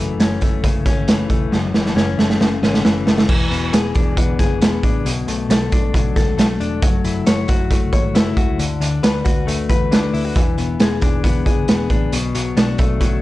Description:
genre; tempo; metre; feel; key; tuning
jangly indie pop; 136 BPM; 4/4; straight; F# minor; A4 = 439 Hz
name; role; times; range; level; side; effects
direct-recorded clean electric guitar; arpeggios; 0.0-13.2 s; F#2 to C#5; -21 LUFS; left 5 dB; spring reverb
vintage muted picked electric bass; bass; 0.0-13.2 s; E1 to E2; -25 LUFS; equal; transformer saturation
raw garage drum kit; drums; 0.2-13.1 s; crash cymbal, hi-hat, kick drum, snare drum; -16 LUFS; right 1 dB; vintage 12-bit sampler grit
room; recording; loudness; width
little or no reverb; none; -15 LUFS; side -17 dB against mid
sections
0.0-3.3 A section; 3.3-13.2 A section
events
drum fill 1.5-3.3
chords
0.0 F#m7; 3.3 E7; 5.1 Bm7; 6.8 F#m7; 8.6 D6; 10.4 E7; 12.1 Bm7

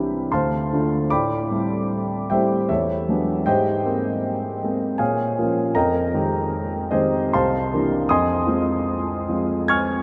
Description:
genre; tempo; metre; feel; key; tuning
classical, impressionist solo piano; 77 BPM; 3/4; uneven beats, rubato; unclear; A4 = 440 Hz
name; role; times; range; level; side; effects
warm grand piano; solo; 0.0-10.0 s; C2 to Ab6; -22 LUFS; equal; none
room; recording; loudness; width
wet huge ambient reverb, RT60 7.9 s; in a vast, echoing space; -22 LUFS; mono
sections
0.0-10.0 A section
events
none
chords
0.3 Dm7; 1.1 Am11; 2.7 E9; 3.5 Abmaj9; 5.0 Bbm7; 5.8 Fm11; 7.3 C9; 8.1 Fm7

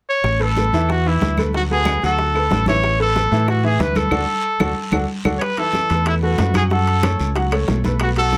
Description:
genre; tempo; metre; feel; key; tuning
latin, salsa; 185 BPM; 4/4; straight; A major; A4 = 438 Hz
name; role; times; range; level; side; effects
clear trumpet; melody; 0.1-8.4 s; E4 to C#5; -22 LUFS; equal; none
fingered electric bass; bass; 0.2-8.4 s; A1 to A2; -22 LUFS; equal; none
bongos; percussion; 0.2-8.4 s; none; -30 LUFS; equal; none
claves; percussion; 0.2-8.2 s; none; -35 LUFS; equal; none
congas; percussion; 0.2-8.4 s; none; -28 LUFS; equal; none
guiro; percussion; 0.2-8.4 s; none; -38 LUFS; equal; none
bright upright piano; accompaniment; 0.4-8.4 s; E3 to F#5; -26 LUFS; equal; none
timbales; percussion; 5.4-8.4 s; none; -32 LUFS; equal; none
room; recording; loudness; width
light reverb; close, detailed microphones; -18 LUFS; mono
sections
0.2-5.4 A section; 5.4-8.4 B section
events
band accent 4.1-5.4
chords
0.2 Asus2; 1.5 D6; 2.8 Asus2; 4.1 D; 5.4 Asus2; 6.7 F#m

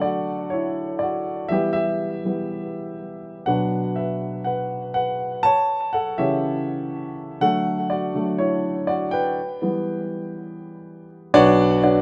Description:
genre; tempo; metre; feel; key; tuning
pop; 122 BPM; 4/4; straight; D major; A4 = 442 Hz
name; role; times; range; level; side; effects
warm concert grand piano; solo; 0.0-12.0 s; B1 to A5; -23 LUFS; equal; tape echo
room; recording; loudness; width
wet small room reverb, RT60 0.5 s; rough home demo mix; -23 LUFS; mono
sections
0.0-11.3 A section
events
grand piano solo 0.0-11.3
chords
0.0 Dadd9; 1.5 Em; 3.5 Bm; 5.4 A; 7.4 Dadd9; 9.4 Em; 11.3 Bmadd9

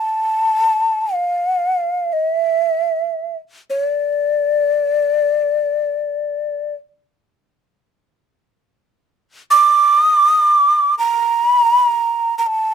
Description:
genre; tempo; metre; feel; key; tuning
japanese traditional, Japanese chamber music; free time; none; none; D hirajoshi; A4 = 440 Hz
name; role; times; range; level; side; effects
breathy mellow shakuhachi; solo; 0.0-12.7 s; D5 to D6; -14 LUFS; equal; none
room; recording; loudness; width
little or no reverb; close, detailed microphones; -14 LUFS; side -7 dB against mid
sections
0.0-8.0 A section; 8.0-12.7 A section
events
none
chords
none

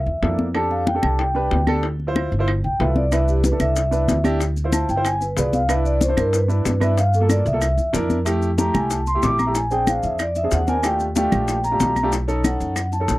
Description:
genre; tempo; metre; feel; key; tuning
Afro-Cuban jazz; 187 BPM; 4/4; straight; C major; A4 = 441 Hz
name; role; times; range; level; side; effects
vibraphone with soft mallets; melody; 0.0-13.2 s; G4 to D6; -22 LUFS; equal; none
upright bass; bass; 0.0-13.2 s; G1 to G2; -22 LUFS; equal; none
bongos; percussion; 0.1-13.2 s; none; -28 LUFS; left 4 dB; none
congas; percussion; 0.1-13.2 s; none; -25 LUFS; left 2 dB; none
warm grand piano; accompaniment; 0.2-13.2 s; A3 to C5; -25 LUFS; right 1 dB; none
claves; percussion; 0.5-12.9 s; none; -32 LUFS; right 7 dB; none
maracas; percussion; 3.1-13.2 s; none; -34 LUFS; left 5 dB; none
room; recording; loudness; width
little or no reverb; dry, close 1970s-style studio recording; -18 LUFS; side -18 dB against mid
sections
0.0-8.3 A section; 8.3-13.2 A section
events
vibraphone solo 0.0-13.2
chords
0.0 C13 (rootless); 0.5 F69; 1.8 Dm7; 2.5 G13; 3.1 Cmaj7; 4.4 Dm7; 5.0 G7b9; 5.7 Cmaj9; 7.0 Gm7; 7.6 C7; 8.3 Fmaj7; 9.6 Bb7; 10.8 Ebmaj9#11; 12.1 B9

